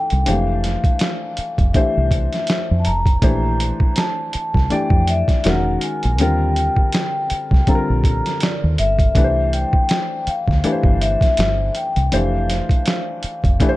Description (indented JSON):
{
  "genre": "R&B, neo-soul",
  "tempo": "81 BPM",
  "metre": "4/4",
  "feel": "swing 58% on 16ths",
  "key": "F major",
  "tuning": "A4 = 440 Hz",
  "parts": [
    { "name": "vibraphone with soft mallets", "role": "melody", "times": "0.0-13.8 s", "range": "D5 to Bb5", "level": "-22 LUFS", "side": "left 2 dB", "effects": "slapback echo" },
    { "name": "warm upright piano", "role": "accompaniment", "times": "0.0-13.8 s", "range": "D3 to D5", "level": "-23 LUFS", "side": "left 2 dB", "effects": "none" },
    { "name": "deep dub fingered electric bass", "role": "bass", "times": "0.1-13.6 s", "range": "E1 to F2", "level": "-19 LUFS", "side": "equal", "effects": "none" },
    { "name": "boom bap sampler-style drum kit", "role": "drums", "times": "0.1-13.8 s", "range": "hi-hat, kick drum, snare drum", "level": "-18 LUFS", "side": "equal", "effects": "none" }
  ],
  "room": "little or no reverb",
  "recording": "dark, warm production",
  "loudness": "-16 LUFS",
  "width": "side -18 dB against mid",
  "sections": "0.0-13.8 A section",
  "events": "none",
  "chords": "0.3 Fmaj9; 3.2 Bbmaj13; 5.4 Emaj7; 6.2 Ebmaj7; 9.1 C; 12.1 Fmaj9"
}